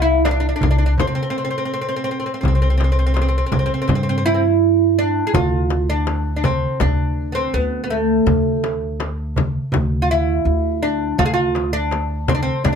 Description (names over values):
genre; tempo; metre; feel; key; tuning
Turkish makam ensemble; 82 BPM; 4/4; straight; C makam rast, D makam nikriz from 5.4 s; A4 = 444 Hz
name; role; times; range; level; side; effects
oud; melody; 0.0-12.8 s; A3 to Ab4; -19 LUFS; right 1 dB; none
upright bass; bass; 0.0-12.8 s; C2 to C3; -21 LUFS; equal; none
darbuka; percussion; 0.2-12.8 s; none; -24 LUFS; right 2 dB; none
frame drum; percussion; 0.3-12.8 s; none; -24 LUFS; left 6 dB; none
room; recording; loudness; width
little or no reverb; close, detailed microphones; -16 LUFS; side -7 dB against mid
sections
0.0-5.4 A section; 5.4-12.8 B section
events
none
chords
none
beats
0.25 0.98 1.71 | 2.44 3.17 3.90 4.62 | 5.35 6.08 6.81 7.54 | 8.27 9.00 9.73 10.46 | 11.19 11.92 12.65